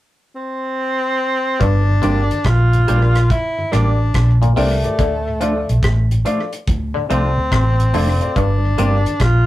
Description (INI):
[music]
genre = roots reggae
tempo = 71 BPM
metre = 4/4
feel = swing 65% on 16ths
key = G minor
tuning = A4 = 440 Hz
[part]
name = warm tenor saxophone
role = melody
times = 0.4-9.5 s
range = A3 to F4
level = -20 LUFS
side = equal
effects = none
[part]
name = muted clav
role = arpeggios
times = 1.6-9.0 s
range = G2 to F3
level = -23 LUFS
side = left 3 dB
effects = phaser
[part]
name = vintage muted fingered electric bass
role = bass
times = 1.6-9.5 s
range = F1 to D2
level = -16 LUFS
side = equal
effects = none
[part]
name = deep reggae drum kit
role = drums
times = 1.6-9.5 s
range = hi-hat, kick drum, rim click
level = -22 LUFS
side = equal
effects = none
[part]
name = mellow tonewheel organ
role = accompaniment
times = 1.9-9.1 s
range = D2 to D4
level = -26 LUFS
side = left 1 dB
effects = chorus vibrato, stopped rotary speaker
[part]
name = semi-hollow electric guitar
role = accompaniment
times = 2.0-9.0 s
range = F3 to G4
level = -24 LUFS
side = right 4 dB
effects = phaser
[part]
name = dark upright piano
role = stabs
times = 2.0-9.0 s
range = F4 to D5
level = -25 LUFS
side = left 3 dB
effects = none
[sound]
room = moderate studio ambience, RT60 0.5 s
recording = rough rehearsal-room recording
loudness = -14 LUFS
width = side -15 dB against mid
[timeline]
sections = 0.0-1.6 A section; 1.6-9.5 B section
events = none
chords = 0.0 N.C.; 1.6 Gm; 5.0 Dm; 8.4 Gm